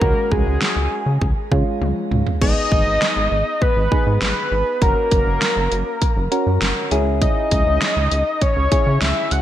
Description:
synth-pop; 100 BPM; 4/4; straight; A4 = 440 Hz
fat analog lead; melody; 0.0-9.4 s; G#4 to F#5; -21 LUFS; equal; chorus, shimmer reverb, ping-pong delay
soft electric-piano-like synth keys; accompaniment; 0.0-9.4 s; G#3 to A#4; -25 LUFS; equal; chorus, shimmer reverb
rubbery square bass; bass; 0.0-9.4 s; F#1 to C#3; -20 LUFS; equal
pop drum kit; drums; 0.0-9.4 s; crash cymbal, hi-hat, kick drum, snare drum, toms; -20 LUFS; equal; gated reverb
moderate plate reverb, RT60 2.3 s; bright 1980s-style digital production; -16 LUFS; side -12 dB against mid
0.0-2.4 A section; 2.4-9.4 B section
drum fill 1.8-2.4
0.0 F#sus2/C#; 2.4 G#m; 4.8 F#; 6.9 C#m

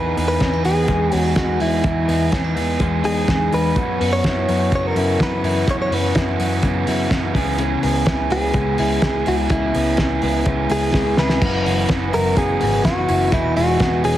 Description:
jangly indie pop; 126 BPM; 4/4; straight; A4 = 436 Hz
direct-recorded clean electric guitar; melody; 0.0-14.2 s; E4 to C#5; -22 LUFS; equal; spring reverb
raw garage guitar; accompaniment; 0.0-14.2 s; F#2 to G#4; -24 LUFS; right 7 dB; overdrive
direct-recorded clean electric guitar; arpeggios; 0.0-14.2 s; F#2 to E4; -23 LUFS; left 5 dB
vintage muted picked electric bass; bass; 0.0-14.2 s; E1 to F#2; -23 LUFS; equal
cloth-damped thuddy drum kit; drums; 0.2-14.2 s; crash cymbal, hi-hat, kick drum, snare drum; -22 LUFS; equal
light reverb, studio reverb; heavily compressed radio sound, multiband compression; -16 LUFS; side -12 dB against mid
0.0-11.4 A section; 11.4-14.2 B section
drum fill 10.9-11.4
0.0 Emaj7; 3.8 F#7sus4; 7.4 C#m7; 11.4 F#7sus4; 13.3 Emaj7

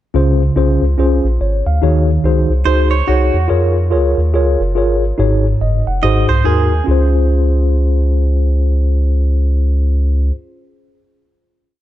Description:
uptempo gospel; 142 BPM; 4/4; swing 61% on 8ths; Db major; A4 = 441 Hz
mellow tine electric piano; accompaniment; 0.1-10.3 s; Db2 to Gb5; -16 LUFS; left 1 dB; medium stereo tremolo
round analog bass; bass; 0.1-10.3 s; F1 to F2; -14 LUFS; equal
direct-recorded clean electric guitar; second line; 2.7-3.5, 6.0-6.9 s; Gb4 to Eb5; -20 LUFS; right 8 dB
light reverb; dark, warm production; -12 LUFS; side -13 dB against mid
0.1-6.9 breakdown; 6.9-10.3 final chord
0.1 Dbmaj7; 1.8 Ab7sus4; 3.5 Db6; 5.2 Ab7sus4; 6.0 Ab7; 6.9 Dbmaj7

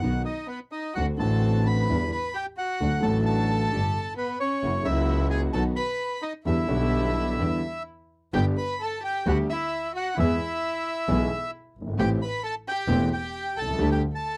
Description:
tango; 131 BPM; 4/4; rubato; E minor, G major from 8.3 s; A4 = 440 Hz
bandoneon; melody; 0.0-14.4 s; B4 to B5; -33 LUFS; equal
warm concert grand piano; accompaniment; 0.0-14.0 s; E1 to G#4; -30 LUFS; equal
warm studio string section; stabs; 0.0-14.0 s; G3 to G#4; -37 LUFS; equal
clear double bass; bass; 0.0-14.0 s; E1 to E2; -29 LUFS; equal
warm violin; second line; 0.2-14.4 s; B3 to B4; -36 LUFS; equal
little or no reverb; dry, close 1970s-style studio recording; -26 LUFS; mono
0.0-8.3 A section; 8.3-14.4 B section
0.0 B; 1.0 D7; 1.9 Em7; 2.8 D; 3.7 Gsus2; 4.6 F#7; 5.5 B; 6.5 Em7; 8.3 G; 10.2 E; 12.0 Am7; 13.8 Dsus4

